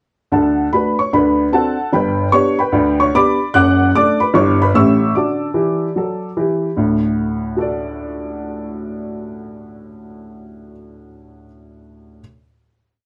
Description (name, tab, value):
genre	jazz, stride piano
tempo	149 BPM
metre	4/4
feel	swing 65% on 8ths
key	D major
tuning	A4 = 440 Hz
part	clear upright piano	solo	0.3-12.2 s	F#1 to F#6	-17 LUFS	equal	none
room	moderate small room ambience, RT60 0.5 s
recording	none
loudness	-16 LUFS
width	mono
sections	0.3-6.8 A section; 6.8-10.0 final chord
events	none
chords	0.3 D; 1.1 D7; 1.9 G; 3.5 D/F#; 4.3 Em/G; 4.8 A7; 5.2 D